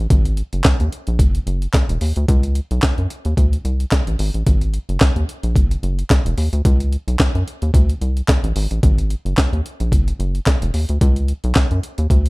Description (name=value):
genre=early-eighties boogie funk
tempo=110 BPM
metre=4/4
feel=swing 56% on 16ths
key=unclear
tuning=A4 = 440 Hz
part: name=rubbery square bass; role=bass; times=0.0-12.3 s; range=E1 to Gb2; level=-18 LUFS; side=equal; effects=none
part: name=breakbeat sampler-style drum kit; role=drums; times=0.1-12.3 s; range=handclaps, hi-hat, kick drum, snare drum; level=-16 LUFS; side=equal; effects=none
room=little or no reverb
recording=none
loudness=-15 LUFS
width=side -25 dB against mid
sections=0.0-12.3 A section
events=none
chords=none